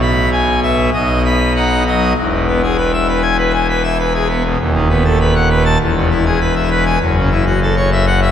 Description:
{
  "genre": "classical, organ toccata",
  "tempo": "99 BPM",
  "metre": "4/4",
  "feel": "straight",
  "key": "E major",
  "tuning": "A4 = 440 Hz",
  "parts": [
    { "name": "pipe organ, full organ", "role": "solo", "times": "0.0-8.3 s", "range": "D#1 to B5", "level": "-12 LUFS", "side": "left 1 dB", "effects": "none" }
  ],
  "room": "wet church reverb, RT60 3.5 s",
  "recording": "none",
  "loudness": "-12 LUFS",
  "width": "side -9 dB against mid",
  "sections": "0.0-2.2 A section; 2.2-8.3 B section",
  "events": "none",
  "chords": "0.0 E/B; 0.9 B; 2.2 E; 4.6 B7/D#; 5.8 E; 7.0 F#m7"
}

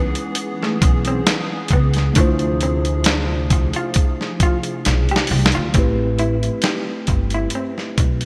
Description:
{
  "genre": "R&B, neo-soul",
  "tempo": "67 BPM",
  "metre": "4/4",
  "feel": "swing 54% on 16ths",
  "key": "D dorian",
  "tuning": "A4 = 440 Hz",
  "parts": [
    { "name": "electric guitar through a small old amp", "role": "second line", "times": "0.0-8.0 s", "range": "A3 to G4", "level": "-29 LUFS", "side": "equal", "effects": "subtle chorus" },
    { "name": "mellow tine electric piano", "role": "accompaniment", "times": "0.0-8.3 s", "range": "G#3 to C5", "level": "-28 LUFS", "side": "equal", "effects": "none" },
    { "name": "hollow soft pad", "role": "sustained chords", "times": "0.0-5.7 s", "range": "C3 to G#4", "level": "-31 LUFS", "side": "equal", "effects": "ensemble chorus" },
    { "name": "upright bass", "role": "bass", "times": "0.0-8.3 s", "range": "G1 to D2", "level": "-22 LUFS", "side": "equal", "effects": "none" },
    { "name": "dusty soul sampler-style drum kit", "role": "drums", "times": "0.2-8.3 s", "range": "hi-hat, kick drum, snare drum", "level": "-21 LUFS", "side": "equal", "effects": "gated reverb" }
  ],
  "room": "light reverb, digital ambience",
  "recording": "bright 1980s-style digital production",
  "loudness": "-19 LUFS",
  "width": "mono",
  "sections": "0.0-5.7 A section; 5.7-8.3 B section",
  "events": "drum fill 4.8-5.7",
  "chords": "0.0 C#m9; 2.2 Dm9; 5.7 Am9"
}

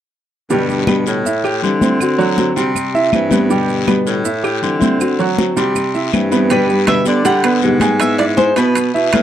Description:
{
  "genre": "latin, Cuban son and guajira",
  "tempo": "160 BPM",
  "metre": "4/4",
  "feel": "straight",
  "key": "G major",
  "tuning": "A4 = 440 Hz",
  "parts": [
    { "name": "nylon-string guitar", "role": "accompaniment", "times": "0.5-9.2 s", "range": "B2 to G4", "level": "-18 LUFS", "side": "left 3 dB", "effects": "none" },
    { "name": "bright baby grand piano", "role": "arpeggios", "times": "0.5-9.2 s", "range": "F#3 to Ab5", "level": "-17 LUFS", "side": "right 4 dB", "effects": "none" },
    { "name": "clear baritone saxophone", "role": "bass", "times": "0.5-9.2 s", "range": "G2 to D3", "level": "-19 LUFS", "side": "left 1 dB", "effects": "none" },
    { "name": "congas", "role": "percussion", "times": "0.5-9.2 s", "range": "none", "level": "-20 LUFS", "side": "left 2 dB", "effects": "none" },
    { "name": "guiro", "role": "percussion", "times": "0.5-9.2 s", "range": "none", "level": "-29 LUFS", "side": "left 21 dB", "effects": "none" },
    { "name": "maracas", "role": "percussion", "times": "0.5-9.2 s", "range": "none", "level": "-30 LUFS", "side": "right 19 dB", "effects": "none" },
    { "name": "claves", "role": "percussion", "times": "0.9-9.2 s", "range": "none", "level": "-29 LUFS", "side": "right 7 dB", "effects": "none" },
    { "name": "Cuban tres", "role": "melody", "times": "6.5-9.2 s", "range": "B4 to F#5", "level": "-18 LUFS", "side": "left 1 dB", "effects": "none" },
    { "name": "timbales", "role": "percussion", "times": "6.5-9.2 s", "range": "none", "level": "-22 LUFS", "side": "right 6 dB", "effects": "none" }
  ],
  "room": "light reverb",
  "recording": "dry, close 1970s-style studio recording",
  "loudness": "-12 LUFS",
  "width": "side -10 dB against mid",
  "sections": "0.5-6.5 A section; 6.5-9.2 B section",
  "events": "none",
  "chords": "0.5 G; 1.3 Am7; 2.0 D7; 2.8 C; 3.5 G; 4.3 Am7; 5.0 D7; 5.8 C; 6.5 G; 8.0 E/G#"
}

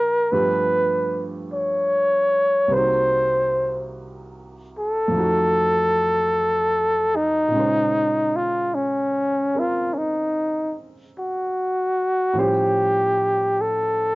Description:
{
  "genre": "jazz ballad",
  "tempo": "50 BPM",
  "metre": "4/4",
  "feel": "swing 68% on 8ths",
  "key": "Bb minor",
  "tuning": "A4 = 441 Hz",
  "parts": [
    { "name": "breathy flugelhorn", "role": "melody", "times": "0.0-14.2 s", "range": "Db4 to Db5", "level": "-19 LUFS", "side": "equal", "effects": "cassette tape, plate reverb" },
    { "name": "warm grand piano", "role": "accompaniment", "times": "0.0-14.2 s", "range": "C2 to C5", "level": "-27 LUFS", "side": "right 1 dB", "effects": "cassette tape" }
  ],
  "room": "moderate booth ambience, RT60 0.2 s",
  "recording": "home recording on cassette, nothing above 7.5 kHz",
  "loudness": "-18 LUFS",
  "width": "side -21 dB against mid",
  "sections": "0.0-14.2 A section",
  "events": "none",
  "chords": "0.3 G7; 2.7 Cm7b5; 5.1 F7b9; 7.5 Bbm9; 12.3 A7alt"
}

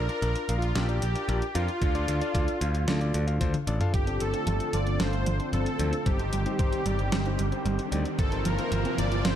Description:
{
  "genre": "synthwave",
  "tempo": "113 BPM",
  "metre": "4/4",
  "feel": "straight",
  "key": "unclear",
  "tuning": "A4 = 440 Hz",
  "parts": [
    { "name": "soft supersaw", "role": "melody", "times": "0.0-9.4 s", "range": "F4 to D5", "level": "-32 LUFS", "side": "equal", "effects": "tape echo" },
    { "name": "warm electric grand piano", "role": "stabs", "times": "0.0-9.4 s", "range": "C4 to F5", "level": "-35 LUFS", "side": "left 4 dB", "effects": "low-pass filter" },
    { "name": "modern bright picked electric bass", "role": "bass", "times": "0.0-9.4 s", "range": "G1 to F2", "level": "-28 LUFS", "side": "equal", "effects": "sidechain pumping" },
    { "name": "clean 12-bit digital drum machine", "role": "drums", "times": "0.1-9.4 s", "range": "hi-hat, snare drum, toms", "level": "-33 LUFS", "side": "equal", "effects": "small room reverb" },
    { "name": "electronic kick drum", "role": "drums", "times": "1.8-8.3 s", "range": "none", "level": "-28 LUFS", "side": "equal", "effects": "small room reverb" },
    { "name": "lush unison pad", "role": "sustained chords", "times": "3.9-9.4 s", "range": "C3 to G4", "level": "-34 LUFS", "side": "right 1 dB", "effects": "chorus" },
    { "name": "soft round pluck", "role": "arpeggios", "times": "3.9-9.4 s", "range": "F3 to C5", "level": "-35 LUFS", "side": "right 3 dB", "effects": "lush chorus, cassette tape" },
    { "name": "riser", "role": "sound effects", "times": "6.7-9.4 s", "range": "none", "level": "-38 LUFS", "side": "right 1 dB", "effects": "none" }
  ],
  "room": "light reverb, digital ambience",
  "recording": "dark, warm production",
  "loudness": "-25 LUFS",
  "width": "side -10 dB against mid",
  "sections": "0.0-3.9 A section; 3.9-9.4 B section",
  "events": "drum fill 3.4-3.9; filter sweep on synth arpeggio sound 3.9-9.4; filter sweep on electric grand piano 3.9-9.4; riser 6.7-9.4",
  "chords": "0.0 Bb; 1.8 Dm; 3.9 Dm7/G; 6.1 Cm/G; 8.2 Bbsus2/G"
}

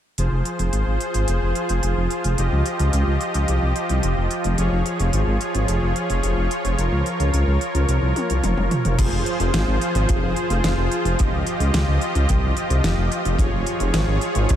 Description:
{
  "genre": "synthwave",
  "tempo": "109 BPM",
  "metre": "4/4",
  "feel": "straight",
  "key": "F minor",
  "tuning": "A4 = 440 Hz",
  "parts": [
    { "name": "soft supersaw", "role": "sustained chords", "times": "0.2-14.6 s", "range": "F3 to Eb5", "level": "-23 LUFS", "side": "equal", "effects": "vintage 12-bit sampler grit, sidechain pumping" },
    { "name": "dark detuned saw bass", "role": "bass", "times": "0.2-14.6 s", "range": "F1 to Db2", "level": "-20 LUFS", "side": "equal", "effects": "tube saturation" },
    { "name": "pop drum kit", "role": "drums", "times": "0.2-14.6 s", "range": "crash cymbal, hi-hat, snare drum, toms", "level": "-28 LUFS", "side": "equal", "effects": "none" },
    { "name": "kick drum", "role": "drums", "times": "9.0-14.6 s", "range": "none", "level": "-22 LUFS", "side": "equal", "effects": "none" }
  ],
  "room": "light reverb, small room ambience",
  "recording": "none",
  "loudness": "-18 LUFS",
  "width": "side -10 dB against mid",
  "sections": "0.2-9.0 A section; 9.0-14.6 B section",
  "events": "drum fill 8.2-9.0",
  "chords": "0.2 Fm; 2.4 Ebadd9/F; 4.6 Db/F; 6.8 Bbm/F; 9.0 Fm; 11.2 Ebadd9/F; 13.4 Db/F"
}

